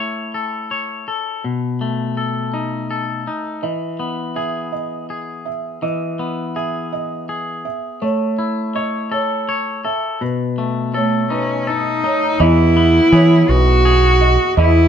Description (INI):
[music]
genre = rock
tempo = 55 BPM (dotted quarters)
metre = 6/8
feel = straight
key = E major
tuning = A4 = 441 Hz
[part]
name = twangy electric guitar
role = arpeggios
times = 0.0-14.9 s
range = B2 to C#5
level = -21 LUFS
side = left 3 dB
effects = none
[part]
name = felt-muted upright piano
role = arpeggios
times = 3.6-14.9 s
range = B4 to E5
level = -24 LUFS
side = right 6 dB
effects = none
[part]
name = muted cello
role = melody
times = 10.9-14.9 s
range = A3 to F#4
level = -14 LUFS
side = equal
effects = none
[part]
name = growling fingered electric bass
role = bass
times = 12.4-14.9 s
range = B1 to E3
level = -13 LUFS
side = right 1 dB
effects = overdrive
[sound]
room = moderate stone room reverb, RT60 1.0 s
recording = band playing live in one room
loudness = -16 LUFS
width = side -8 dB against mid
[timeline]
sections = 0.0-12.4 A section; 12.4-14.9 B section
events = none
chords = 0.0 A; 1.4 B7; 3.6 Emaj7; 8.0 A; 10.2 B7; 12.4 Emaj7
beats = 0.34 | 1.44 2.53 | 3.63 4.73 | 5.83 6.92 | 8.02 9.12 | 10.21 11.30 | 12.40 13.49 | 14.58